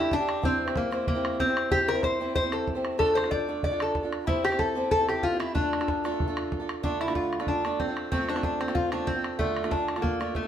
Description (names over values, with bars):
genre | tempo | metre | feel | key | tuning
celtic folk, Celtic reel | 187 BPM | 4/4 | swing 54% on 8ths | D minor | A4 = 440 Hz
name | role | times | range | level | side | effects
lap resonator guitar | melody | 0.0-10.5 s | A3 to D5 | -27 LUFS | left 1 dB | none
fingerpicked acoustic archtop guitar | accompaniment | 0.0-10.5 s | D3 to C5 | -31 LUFS | right 2 dB | none
bodhran | percussion | 0.1-10.4 s | none | -32 LUFS | right 1 dB | none
room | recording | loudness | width
wet stone room reverb, RT60 1.0 s | band playing live in one room | -25 LUFS | side -10 dB against mid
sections
0.0-6.8 A section; 6.8-10.5 B section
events
none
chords
0.4 C; 3.0 Dm; 4.3 C; 5.6 Dm; 8.1 F; 9.4 Dm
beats
0.11 | 0.43 0.75 1.07 1.39 | 1.71 2.03 2.35 2.67 | 2.99 3.31 3.63 3.95 | 4.27 4.59 4.91 5.23 | 5.55 5.87 6.19 6.51 | 6.83 7.15 7.47 7.79 | 8.11 8.43 8.75 9.07 | 9.39 9.71 10.03 10.35